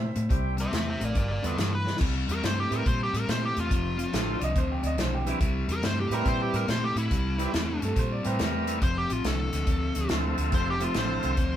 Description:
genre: electric blues shuffle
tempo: 141 BPM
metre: 4/4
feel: swing 66% on 8ths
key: C mixolydian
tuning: A4 = 440 Hz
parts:
  - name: bright upright piano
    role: second line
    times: 0.0-0.5, 4.4-8.5 s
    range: E4 to E5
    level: -35 LUFS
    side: right 4 dB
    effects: none
  - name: overdriven semi-hollow guitar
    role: riff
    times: 0.0-11.6 s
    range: F2 to A3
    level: -31 LUFS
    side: left 3 dB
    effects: none
  - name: vintage muted fingered electric bass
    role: bass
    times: 0.0-11.6 s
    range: F1 to Bb2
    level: -30 LUFS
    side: equal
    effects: none
  - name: natural country drum kit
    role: drums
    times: 0.2-11.5 s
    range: crash cymbal, hi-hat, kick drum, snare drum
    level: -30 LUFS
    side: equal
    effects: none
  - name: overdriven tonewheel organ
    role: accompaniment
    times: 0.3-11.4 s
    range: E3 to Bb4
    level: -33 LUFS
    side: right 4 dB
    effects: slow rotary speaker
  - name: dark smooth lead guitar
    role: melody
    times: 0.6-11.6 s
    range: E4 to E5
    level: -32 LUFS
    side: equal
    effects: overdrive
room: moderate stone room reverb, RT60 1.3 s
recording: band playing live in one room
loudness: -25 LUFS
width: side -11 dB against mid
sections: 0.0-2.0 A section; 2.0-11.6 A section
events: drum fill 1.8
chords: 0.0 C; 1.2 G; 2.0 C; 3.7 F; 5.4 C; 8.8 F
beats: | 0.30 0.73 1.16 1.58 | 2.01 2.43 2.86 3.28 | 3.71 4.13 4.56 4.99 | 5.41 5.84 6.26 6.69 | 7.12 7.54 7.97 8.39 | 8.82 9.25 9.68 10.10 | 10.53 10.96 11.38

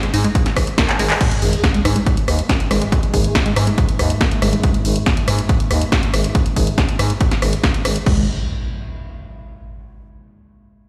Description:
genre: driving peak-time techno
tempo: 140 BPM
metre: 4/4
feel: straight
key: unclear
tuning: A4 = 439 Hz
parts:
  - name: tight sequenced synth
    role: riff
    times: 0.0-4.6, 8.1-8.3 s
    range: G#3 to G#4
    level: -26 LUFS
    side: equal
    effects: chorus, sidechain pumping, dub echo
  - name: punchy analog drum machine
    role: drums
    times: 0.0-8.2 s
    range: crash cymbal, handclaps, hi-hat, rim click, snare drum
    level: -24 LUFS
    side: equal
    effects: sidechain pumping on hats, sidechain pumping on cymbals
  - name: growling FM bass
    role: bass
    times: 0.1-8.3 s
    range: G#1 to G#2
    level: -21 LUFS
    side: equal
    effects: tube saturation, sidechain pumping
  - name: electronic kick drum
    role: drums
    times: 0.3-8.2 s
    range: none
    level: -21 LUFS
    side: equal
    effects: none
  - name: metallic inharmonic drone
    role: drone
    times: 2.2-8.1 s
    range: G#2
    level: -29 LUFS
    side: equal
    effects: chorus, built-in reverb, sidechain pumping
  - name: sub drop and impact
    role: sound effects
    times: 1.2-2.9, 8.1-9.8 s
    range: none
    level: -28 LUFS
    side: equal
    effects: none
room: light reverb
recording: played on a big sound system in a bare room, stone room reverb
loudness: -17 LUFS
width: mono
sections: 0.0-1.2 A section; 1.2-8.1 B section; 8.1-9.8 C section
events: drop 0.0-1.2; drum fill 0.9-1.2; impact 1.2-2.9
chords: none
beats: 0.35 0.78 | 1.21 1.64 2.06 2.49 | 2.92 3.35 3.78 4.21 | 4.63 5.06 5.49 5.92 | 6.35 6.78 7.21 7.63 | 8.06 8.49 8.92 9.35

